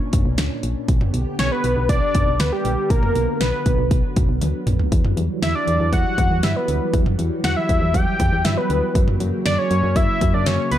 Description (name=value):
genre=synth-pop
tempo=119 BPM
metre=4/4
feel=straight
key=unclear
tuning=A4 = 440 Hz
part: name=soft string machine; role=sustained chords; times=0.0-10.8 s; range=A#2 to G4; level=-26 LUFS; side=equal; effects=ensemble chorus
part: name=solid FM bass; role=bass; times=0.1-10.8 s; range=A#1 to G2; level=-22 LUFS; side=equal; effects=none
part: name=pop drum kit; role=drums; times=0.1-10.8 s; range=hi-hat, kick drum, snare drum, toms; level=-21 LUFS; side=equal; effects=none
part: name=fat analog lead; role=melody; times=1.4-10.8 s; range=G4 to G5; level=-22 LUFS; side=equal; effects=chorus, tape echo
room=light reverb, digital ambience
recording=dark, warm production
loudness=-17 LUFS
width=side -12 dB against mid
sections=0.0-10.8 A section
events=drum fill 4.4-4.9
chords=0.0 Bmadd9; 0.9 G; 4.9 Emadd9; 9.0 F#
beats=0.38 | 0.89 1.39 1.89 2.40 | 2.90 3.41 3.91 4.42 | 4.92 5.42 5.93 6.43 | 6.94 7.44 7.94 8.45 | 8.95 9.46 9.96 10.46